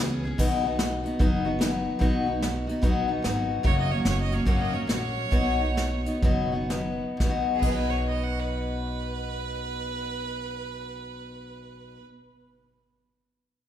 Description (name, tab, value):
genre	honky-tonk and classic country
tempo	118-147 BPM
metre	4/4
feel	swing 64% on 8ths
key	B major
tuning	A4 = 440 Hz
part	picked steel-string acoustic guitar	accompaniment	0.0-12.1 s	F#2 to G#4	-28 LUFS	left 2 dB	none
part	upright bass	bass	0.0-12.0 s	F#1 to C#2	-32 LUFS	right 1 dB	none
part	soft brush drum kit	drums	0.4-7.7 s	crash cymbal, hi-hat, kick drum, snare drum	-27 LUFS	equal	none
part	clear fiddle	second line	3.7-12.0 s	G#4 to F#5	-34 LUFS	right 6 dB	none
room	wet recital hall reverb, RT60 1.9 s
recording	recorded in a church or concert hall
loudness	-24 LUFS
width	side -10 dB against mid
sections	0.4-7.2 A section; 7.2-11.3 B section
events	slowing down 3.6-7.2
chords	0.4 B; 3.6 F#; 5.3 B